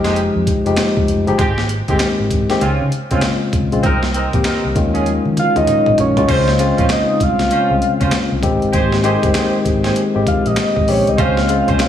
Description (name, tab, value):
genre	R&B, new jack swing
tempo	98 BPM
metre	4/4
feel	swing 62% on 16ths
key	unclear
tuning	A4 = 441 Hz
part	tine electric piano	accompaniment	0.0-11.9 s	Db3 to G4	-18 LUFS	left 4 dB	none
part	mellow horn section	stabs	0.0-11.8 s	Ab3 to C5	-23 LUFS	right 4 dB	digital delay
part	vintage muted fingered electric bass	bass	0.0-11.8 s	F1 to Eb3	-20 LUFS	equal	none
part	breakbeat sampler-style drum kit	drums	0.0-11.9 s	crash cymbal, handclaps, hi-hat, kick drum, snare drum, toms	-20 LUFS	right 1 dB	none
part	soft octave-layered synth lead	melody	5.4-11.9 s	C5 to F5	-17 LUFS	right 1 dB	chorus, phaser
part	group handclap	percussion	6.6-11.9 s	none	-35 LUFS	right 8 dB	none
room	light reverb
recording	small room ambience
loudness	-13 LUFS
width	side -10 dB against mid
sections	0.0-6.3 A section; 6.3-11.9 B section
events	drum fill 5.1-6.3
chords	0.0 Fm9; 1.4 Abmaj7; 2.6 Dbmaj7; 3.8 Cm7; 4.8 Eb9sus4; 6.3 Dbmaj7; 8.4 Abmaj7; 11.2 Dbmaj7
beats	0.17 0.78 | 1.39 2.00 2.61 3.23 | 3.84 4.45 5.06 5.67 | 6.29 6.90 7.51 8.12 | 8.74 9.35 9.96 10.57 | 11.19 11.80